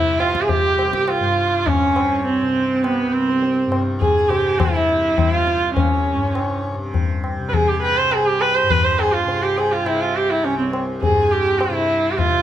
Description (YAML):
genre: indian classical, Hindustani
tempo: 102 BPM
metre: 3/4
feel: straight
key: C raga bhairav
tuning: A4 = 438 Hz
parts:
  - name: warm sarangi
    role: melody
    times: 0.0-12.4 s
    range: B3 to C5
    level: -18 LUFS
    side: right 2 dB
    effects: none
  - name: pedal harmonium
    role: second line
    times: 0.0-12.4 s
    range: B4 to C6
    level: -31 LUFS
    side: equal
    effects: none
  - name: tanpura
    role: drone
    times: 0.0-12.4 s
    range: C2 to C3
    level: -26 LUFS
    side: left 1 dB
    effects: none
  - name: tabla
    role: percussion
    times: 0.2-12.4 s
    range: none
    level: -23 LUFS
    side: left 4 dB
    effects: none
room: light reverb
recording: close, detailed microphones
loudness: -16 LUFS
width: side -11 dB against mid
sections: 0.0-12.4 A section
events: none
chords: none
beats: | 0.49 1.08 1.67 | 2.25 2.84 3.43 | 4.01 4.60 5.19 | 5.77 6.36 6.94 | 7.53 8.11 8.70 | 9.28 9.86 10.45 | 11.03 11.61 12.19